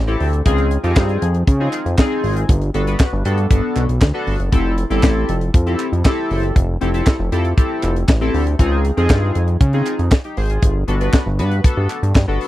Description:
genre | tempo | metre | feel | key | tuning
early-eighties boogie funk | 118 BPM | 4/4 | straight | unclear | A4 = 439 Hz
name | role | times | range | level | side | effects
fat analog bass | bass | 0.0-12.4 s | F1 to Db3 | -17 LUFS | equal | none
chorused polysynth | accompaniment | 0.1-12.5 s | B3 to C5 | -22 LUFS | left 1 dB | none
tight funk drum kit | drums | 0.1-12.5 s | handclaps, hi-hat, kick drum, snare drum | -14 LUFS | equal | none
group handclap | percussion | 1.0-12.3 s | none | -32 LUFS | right 5 dB | none
room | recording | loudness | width
little or no reverb | dry, close 1970s-style studio recording | -14 LUFS | side -15 dB against mid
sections
0.0-12.5 A section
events
none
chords
0.5 Dbmaj9; 2.5 Gmaj9; 4.5 Fmaj9; 8.6 Dbmaj9; 10.6 Gmaj9

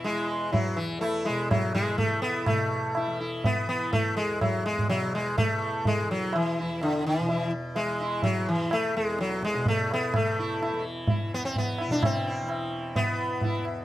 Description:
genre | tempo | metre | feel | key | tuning
indian classical, Hindustani | 126 BPM | 4/4 | straight | E major | A4 = 444 Hz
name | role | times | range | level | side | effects
sitar | melody | 0.0-13.8 s | D3 to E4 | -27 LUFS | equal | none
tanpura | drone | 0.0-13.8 s | E2 to E3 | -36 LUFS | equal | none
tabla | percussion | 0.0-13.8 s | none | -29 LUFS | equal | none
room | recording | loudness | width
light reverb | close, detailed microphones | -25 LUFS | side -14 dB against mid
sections
0.0-2.5 A section; 2.5-13.8 B section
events
speeding up 0.0-13.8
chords
none

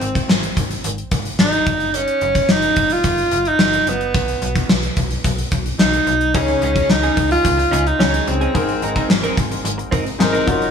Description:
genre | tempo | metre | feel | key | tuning
1980s-style pop | 109 BPM | 4/4 | straight | unclear | A4 = 440 Hz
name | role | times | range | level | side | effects
edgy alto saxophone | melody | 0.0-10.7 s | Cb4 to F4 | -19 LUFS | right 1 dB | tape echo
slap-like FM bass | bass | 0.0-10.7 s | Gb1 to Db2 | -24 LUFS | equal | none
gated 80s drum kit | drums | 0.0-10.7 s | hi-hat, kick drum, snare drum | -19 LUFS | left 1 dB | none
clear concert grand piano | accompaniment | 6.3-10.7 s | Ab2 to Db5 | -22 LUFS | left 5 dB | none
direct-recorded clean electric guitar | riff | 6.3-10.7 s | C4 to Bb4 | -25 LUFS | right 4 dB | analog chorus, tape echo
room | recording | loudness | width
moderate lush hall reverb, RT60 2.5 s | none | -15 LUFS | side -7 dB against mid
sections
0.0-10.7 A section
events
none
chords
0.0 N.C.; 1.7 Gb5; 4.1 Cb; 6.3 Dbsus2; 8.5 Abadd9

